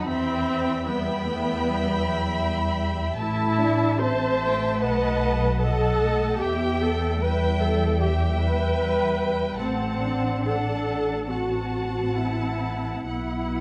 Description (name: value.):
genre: classical, slow romantic movement for string orchestra.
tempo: 64-78 BPM.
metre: 4/4.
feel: rubato.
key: E minor from 3.2 s.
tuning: A4 = 439 Hz.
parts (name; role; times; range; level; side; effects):
muted chamber violin section; melody; 0.0-13.6 s; F#5 to B5; -36 LUFS; equal; none.
muted chamber violin section; second line; 0.0-13.6 s; D#5 to A5; -34 LUFS; equal; none.
muted chamber viola section; accompaniment; 0.0-13.6 s; B3 to C5; -28 LUFS; equal; none.
muted chamber cello section; bass; 0.0-13.6 s; E3 to D4; -33 LUFS; equal; none.
muted chamber double bass section; bass; 0.0-13.6 s; A1 to E2; -30 LUFS; equal; none.
room: moderate recital hall reverb, RT60 1.5 s.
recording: none.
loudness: -24 LUFS.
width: mono.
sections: 0.0-13.6 A section.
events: none.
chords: 0.1 Em; 3.2 Am; 4.8 B7; 6.4 Em; 9.6 F#dim/A; 13.1 B5.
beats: | 0.10 0.87 1.64 2.42 | 3.19 4.02 4.82 5.60 | 6.41 7.21 8.00 8.79 | 9.59 10.47 11.30 12.16 | 13.07.